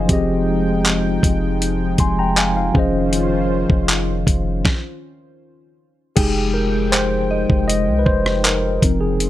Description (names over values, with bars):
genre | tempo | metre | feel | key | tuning
contemporary R&B | 79 BPM | 4/4 | straight | F minor | A4 = 440 Hz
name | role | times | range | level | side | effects
mellow tine electric piano | accompaniment | 0.0-9.3 s | F3 to C6 | -20 LUFS | left 1 dB | fast stereo tremolo
warm analog pad | sustained chords | 0.0-9.3 s | Db3 to G5 | -24 LUFS | equal | chorus
warm 808-style bass | bass | 0.0-9.3 s | F1 to C2 | -22 LUFS | equal | none
soft synth bell | texture | 0.0-0.6, 6.2-9.2 s | Eb5 to Eb6 | -33 LUFS | right 1 dB | chorus, tape echo
dusty soul sampler-style drum kit | drums | 0.1-9.3 s | crash cymbal, handclaps, hi-hat, kick drum, rim click, snare drum | -18 LUFS | equal | none
room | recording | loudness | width
little or no reverb | none | -15 LUFS | side -14 dB against mid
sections
0.0-6.2 A section; 6.2-9.3 B section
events
stop 4.6-6.2; tine electric piano solo 6.2-9.3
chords
0.1 Fm9; 2.7 Dbmaj9/F; 6.2 Fm9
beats
| 0.09 0.85 1.61 2.37 | 3.13 3.89 4.65 5.41 | 6.17 6.93 7.68 8.45 | 9.20